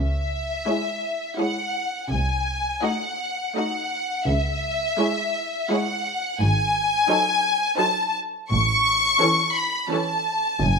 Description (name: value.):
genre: classical, slow romantic movement for string orchestra.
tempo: 84 BPM.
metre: 3/4.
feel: rubato.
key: C# minor.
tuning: A4 = 440 Hz.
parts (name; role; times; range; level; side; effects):
rich studio violin section; melody; 0.0-10.8 s; E5 to C#6; -22 LUFS; left 2 dB; none.
rich studio cello section; bass; 0.0-10.8 s; F#2 to C#3; -27 LUFS; equal; none.
rich studio double bass section; bass; 0.0-10.8 s; F#1 to C#2; -26 LUFS; right 1 dB; none.
rich studio violin section; second line; 0.7-10.4 s; Gb4 to Eb5; -30 LUFS; equal; none.
rich studio viola section; accompaniment; 0.7-10.4 s; E3 to E4; -27 LUFS; right 1 dB; none.
room: moderate large studio reverb, RT60 1.2 s.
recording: minimal, uncompressed stereo recording.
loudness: -21 LUFS.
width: side -5 dB against mid.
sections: 0.0-10.8 A section.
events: none.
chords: 0.0 C#m; 2.1 Cdim7; 4.3 C#m; 6.4 G#7b9; 8.5 A.